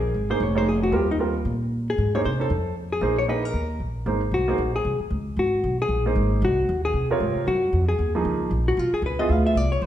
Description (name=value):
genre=jazz, small-group swing and bop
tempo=230 BPM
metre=4/4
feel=swing 58% on 8ths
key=Ab mixolydian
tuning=A4 = 441 Hz
part: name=hollow-body jazz guitar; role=melody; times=0.0-9.8 s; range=Eb4 to F5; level=-25 LUFS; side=left 2 dB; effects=none
part: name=upright bass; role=bass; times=0.0-9.9 s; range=F1 to C3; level=-24 LUFS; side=equal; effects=none
part: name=warm grand piano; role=accompaniment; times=0.3-9.5 s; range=C3 to Eb5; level=-27 LUFS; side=right 3 dB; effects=none
room=wet recital hall reverb, RT60 1.4 s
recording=recorded in a church or concert hall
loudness=-21 LUFS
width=side -11 dB against mid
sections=0.0-4.1 A section; 4.1-9.9 B section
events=hollow-body jazz guitar solo 4.1-9.9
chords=0.0 Bb7(no3); 0.9 Eb; 2.0 Ab; 2.5 F; 3.0 Bb9sus4; 3.5 Eb5; 4.1 Ab7; 5.1 Db5; 6.2 Ab7; 8.2 Db7; 9.3 Ddim7